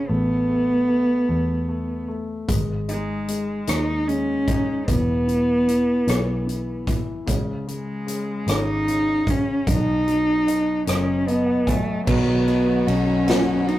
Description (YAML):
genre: six-eight pop ballad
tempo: 50 BPM (dotted quarters)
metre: 6/8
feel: straight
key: unclear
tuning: A4 = 438 Hz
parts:
  - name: rich cello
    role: melody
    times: 0.0-13.8 s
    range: G#3 to D#4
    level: -21 LUFS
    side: equal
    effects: none
  - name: clear concert grand piano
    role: accompaniment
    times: 0.0-13.8 s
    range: B2 to G#5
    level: -29 LUFS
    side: left 3 dB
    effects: none
  - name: vintage muted fingered electric bass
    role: bass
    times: 0.0-13.8 s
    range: E1 to E2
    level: -27 LUFS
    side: equal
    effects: none
  - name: natural country drum kit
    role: drums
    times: 2.5-13.8 s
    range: crash cymbal, hi-hat, kick drum, ride cymbal, rim click, snare drum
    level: -25 LUFS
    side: equal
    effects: none
  - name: rich studio violin section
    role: second line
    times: 12.1-13.8 s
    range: F#4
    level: -34 LUFS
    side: left 1 dB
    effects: none
  - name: fingerpicked steel-string acoustic guitar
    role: arpeggios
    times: 12.1-13.8 s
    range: B2 to B4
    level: -26 LUFS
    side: right 4 dB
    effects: none
room: moderate studio reverb, RT60 0.5 s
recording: rough rehearsal-room recording, tube saturation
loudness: -19 LUFS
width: side -14 dB against mid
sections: 0.0-12.1 A section; 12.1-13.8 B section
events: grand piano fill 10.9-12.1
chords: 0.1 A5; 2.5 G#5; 4.9 E5; 7.3 C#5; 9.7 B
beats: | 0.09 1.29 | 2.49 3.68 | 4.88 6.08 | 7.27 8.47 | 9.67 10.87 | 12.07 13.27